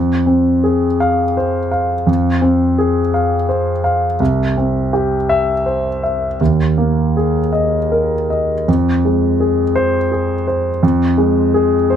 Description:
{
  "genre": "neoclassical minimalist piano",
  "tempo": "52-58 BPM (dotted quarters)",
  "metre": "6/8",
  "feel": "rubato",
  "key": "F minor",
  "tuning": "A4 = 441 Hz",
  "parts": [
    { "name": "warm concert grand piano", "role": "solo", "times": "0.0-12.0 s", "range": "C2 to F5", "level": "-13 LUFS", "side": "equal", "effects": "none" }
  ],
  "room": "little or no reverb",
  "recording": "close, detailed microphones",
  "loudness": "-13 LUFS",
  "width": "side -9 dB against mid",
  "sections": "0.0-12.0 A section",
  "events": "none",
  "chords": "0.0 Fm; 4.2 C; 6.4 Ebsus4; 8.7 Fm",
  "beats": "1.00 | 2.08 3.13 | 4.20 5.29 | 6.40 7.53 | 8.67 9.76 | 10.83 11.90"
}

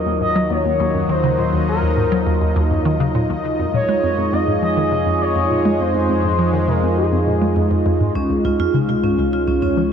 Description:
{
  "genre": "ambient, sequencer-driven space music",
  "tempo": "102 BPM",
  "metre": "4/4",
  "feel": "straight",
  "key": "unclear",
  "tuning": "A4 = 440 Hz",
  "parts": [
    { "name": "expressive synth lead", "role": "melody", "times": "0.0-7.8 s", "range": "Ab4 to Eb5", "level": "-22 LUFS", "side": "left 1 dB", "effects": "lush chorus, ping-pong delay" },
    { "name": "sweeping resonant pad", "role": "sustained chords", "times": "0.0-9.9 s", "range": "Gb3 to Eb5", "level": "-20 LUFS", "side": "equal", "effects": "chorus" },
    { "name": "analog drone", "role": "bass", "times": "0.0-9.9 s", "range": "Db2 to F2", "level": "-24 LUFS", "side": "equal", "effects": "chorus" },
    { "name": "hollow square pluck", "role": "riff", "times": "0.1-9.8 s", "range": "Db2 to Ab3", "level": "-21 LUFS", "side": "equal", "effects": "chorus, phaser, ping-pong delay" },
    { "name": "vibraphone with medium mallets", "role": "arpeggios", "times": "8.2-9.7 s", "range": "Db4 to F4", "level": "-21 LUFS", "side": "moving between equal and right 6 dB", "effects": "auto-pan, ping-pong delay" }
  ],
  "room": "moderate huge ambient reverb, RT60 8.4 s",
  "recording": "dark, warm production",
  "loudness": "-15 LUFS",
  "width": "side -7 dB against mid",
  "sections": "0.0-9.9 A section",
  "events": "none",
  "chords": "0.0 Ebmadd9; 3.4 Fm7; 8.2 Dbadd9",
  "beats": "0.51 | 1.09 1.68 2.27 2.86 | 3.45 4.04 4.62 5.21 | 5.80 6.39 6.98 7.57 | 8.15 8.74 9.33 9.92"
}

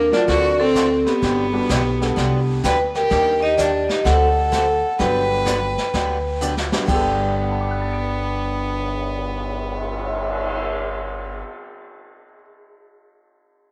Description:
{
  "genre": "country, western swing",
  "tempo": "127 BPM",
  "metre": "4/4",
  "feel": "swing 66% on 8ths",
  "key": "G major",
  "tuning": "A4 = 440 Hz",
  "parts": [
    { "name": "vibraphone with medium mallets", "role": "melody", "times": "0.0-11.4 s", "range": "B3 to G5", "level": "-23 LUFS", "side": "equal", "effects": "none" },
    { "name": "clear fiddle", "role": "second line", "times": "0.0-11.4 s", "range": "Bb3 to B4", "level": "-30 LUFS", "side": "equal", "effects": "none" },
    { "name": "upright bass", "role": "bass", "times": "0.0-11.4 s", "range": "G1 to Eb2", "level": "-28 LUFS", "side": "equal", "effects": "none" },
    { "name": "dark upright piano", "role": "accompaniment", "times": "0.1-12.4 s", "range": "G2 to D7", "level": "-32 LUFS", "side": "equal", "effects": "none" },
    { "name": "jazz brush drum kit", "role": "drums", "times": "0.1-10.6 s", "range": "brushed snare drum, crash cymbal, cymbal swell, hi-hat, kick drum, snare drum", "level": "-30 LUFS", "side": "equal", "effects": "none" },
    { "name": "picked steel-string acoustic guitar", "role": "accompaniment", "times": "0.3-11.5 s", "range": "G2 to A4", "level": "-30 LUFS", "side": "equal", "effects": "none" }
  ],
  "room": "moderate echo chamber reverb, RT60 2.2 s",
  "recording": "none",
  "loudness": "-20 LUFS",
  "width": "mono",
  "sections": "0.0-3.1 A section; 3.1-6.9 B section; 6.9-10.7 C section",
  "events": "drum fill 6.4-6.9",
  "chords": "0.3 D7; 1.2 Gmaj7; 3.1 Ebmaj7; 4.1 D7; 5.0 Gmaj7",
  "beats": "0.28 0.75 | 1.22 1.70 2.17 2.64 | 3.11 3.58 4.05 4.53 | 5.00 5.47 5.94 6.41 | 6.88 7.36 7.83 8.30 | 8.77 9.24 9.72 10.19"
}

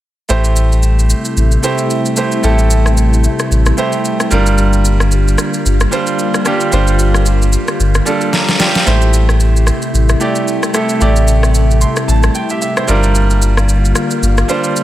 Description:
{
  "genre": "amapiano",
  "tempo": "112 BPM",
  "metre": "4/4",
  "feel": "swing 58% on 16ths",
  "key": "A phrygian",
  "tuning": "A4 = 438 Hz",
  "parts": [
    { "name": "bright concert grand piano", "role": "accompaniment", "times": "0.3-14.8 s", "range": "G3 to C6", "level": "-17 LUFS", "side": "right 3 dB", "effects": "none" },
    { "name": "soft string machine", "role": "sustained chords", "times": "0.7-14.8 s", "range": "C3 to F4", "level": "-19 LUFS", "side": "left 1 dB", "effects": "ensemble chorus" },
    { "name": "sub bass with octave", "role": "bass", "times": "0.3-14.4 s", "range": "G1 to A1", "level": "-11 LUFS", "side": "equal", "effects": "none" },
    { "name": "electronic shaker, rim click and snare drum", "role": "drums", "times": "0.3-14.8 s", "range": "none", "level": "-19 LUFS", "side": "equal", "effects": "none" }
  ],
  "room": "digital ambience",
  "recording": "none",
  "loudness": "-10 LUFS",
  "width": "side -14 dB against mid",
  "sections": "0.3-14.8 A section",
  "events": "grand piano fill 8.1-8.9, 11.5-13.2; drum fill 8.3-8.9",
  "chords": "0.3 Am7; 4.3 Gm7; 8.9 Am7; 12.9 Gm7",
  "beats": "| 0.29 0.83 1.37 1.90 | 2.44 2.97 3.51 4.04 | 4.58 5.12 5.65 6.19 | 6.72 7.26 7.79 8.33 | 8.87 9.40 9.94 10.47 | 11.01 11.54 12.08 12.62 | 13.15 13.69 14.22 14.76"
}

